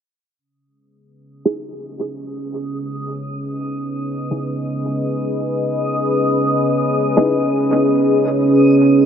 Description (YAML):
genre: ambient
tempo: free time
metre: none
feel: none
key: unclear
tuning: A4 = 440 Hz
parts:
  - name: deep dark ambient pad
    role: sustained chords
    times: 2.1-9.1 s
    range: C#4 to D#5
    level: -16 LUFS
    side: equal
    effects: chorus, built-in reverb
  - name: backwards swelling texture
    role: texture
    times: 2.8-9.1 s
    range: D#6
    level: -28 LUFS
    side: right 1 dB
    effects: built-in reverb
  - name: filtered dub chord stab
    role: stabs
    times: 1.5-7.4 s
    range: B3 to G#4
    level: -22 LUFS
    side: equal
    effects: phaser, analog chorus, dub echo
room: moderate huge ambient reverb, RT60 6.9 s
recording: low-pass filter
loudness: -16 LUFS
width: side -8 dB against mid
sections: 0.4-9.1 A section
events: filter sweep on synth stab 0.4-9.1; filter sweep 0.4-9.1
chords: 0.4 C#7(no3)